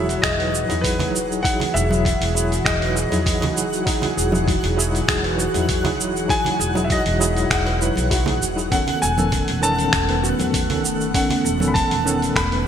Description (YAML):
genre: sunset chillout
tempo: 99 BPM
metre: 4/4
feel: straight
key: E major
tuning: A4 = 444 Hz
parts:
  - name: clear grand piano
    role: melody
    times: 0.0-12.7 s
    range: B4 to B5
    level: -25 LUFS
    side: left 1 dB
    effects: digital delay
  - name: mellow tine electric piano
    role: accompaniment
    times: 0.0-12.7 s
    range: D#3 to B4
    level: -24 LUFS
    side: equal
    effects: medium tremolo, auto-pan, ping-pong delay
  - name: airy breathy pad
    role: sustained chords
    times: 0.0-12.7 s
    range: E3 to F#5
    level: -28 LUFS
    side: right 1 dB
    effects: chorus
  - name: soft round pluck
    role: arpeggios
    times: 0.0-12.6 s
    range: C#4 to E5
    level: -31 LUFS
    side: left 3 dB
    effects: lush chorus, ping-pong delay
  - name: upright bass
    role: bass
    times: 0.0-12.7 s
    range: E1 to E2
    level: -25 LUFS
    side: equal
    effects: none
  - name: twinkling granular texture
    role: texture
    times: 0.0-12.7 s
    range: F#5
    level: -33 LUFS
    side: right 2 dB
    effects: built-in reverb, ensemble chorus
  - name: dusty soul sampler-style drum kit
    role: drums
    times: 0.1-12.6 s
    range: finger snaps, hi-hat, shaker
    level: -25 LUFS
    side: right 2 dB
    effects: gated reverb
  - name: electronic kick drum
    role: drums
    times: 0.2-12.5 s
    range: none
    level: -24 LUFS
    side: equal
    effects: none
  - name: congas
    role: percussion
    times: 0.7-11.7 s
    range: none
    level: -29 LUFS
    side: right 4 dB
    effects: none
room: moderate lush hall reverb, RT60 1.8 s, digital ambience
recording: bright 1980s-style digital production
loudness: -17 LUFS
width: side -9 dB against mid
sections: 0.0-12.7 A section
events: none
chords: 0.0 Emaj9; 8.7 B9/E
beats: 0.23 0.84 | 1.45 2.05 2.66 3.27 | 3.87 4.48 5.08 5.69 | 6.29 6.90 7.51 8.11 | 8.72 9.33 9.93 10.54 | 11.14 11.75 12.36